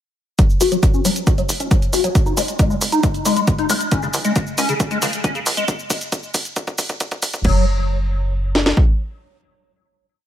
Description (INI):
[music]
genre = uplifting trance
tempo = 136 BPM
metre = 4/4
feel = straight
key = unclear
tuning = A4 = 440 Hz
[part]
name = liquid acid bass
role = arpeggios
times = 0.4-7.7 s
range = C#3 to F#4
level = -20 LUFS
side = left 2 dB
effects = phaser, wide subtle chorus, vintage 12-bit sampler grit, sidechain pumping, analog delay
[part]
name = punchy analog drum machine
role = drums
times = 0.4-7.5 s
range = crash cymbal, hi-hat, shaker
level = -24 LUFS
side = right 2 dB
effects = none
[part]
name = techno drum kit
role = drums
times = 0.4-8.9 s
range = kick drum, snare drum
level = -17 LUFS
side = equal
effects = none
[part]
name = tight sequencer bass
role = bass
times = 0.6-8.7 s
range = F#1 to D#2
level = -22 LUFS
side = equal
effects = sidechain pumping, high-pass filter
[sound]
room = moderate lush hall reverb, RT60 1.9 s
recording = dreamy mix soaked in reverb, high-pass filter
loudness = -16 LUFS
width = side -11 dB against mid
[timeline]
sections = 0.4-7.4 build; 7.4-10.3 final note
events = build-up 0.4-7.4; filter sweep on acid bass 0.4-5.7; filter sweep 0.4-7.4; drum fill 3.9-7.4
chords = 0.4 F#5; 2.2 G#5; 3.9 C#5; 5.7 N.C.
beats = | 0.39 0.83 1.27 1.71 | 2.15 2.59 3.03 3.48 | 3.92 4.36 4.80 5.24 | 5.68 6.12 6.56 7.00 | 7.45 7.89 8.33 8.77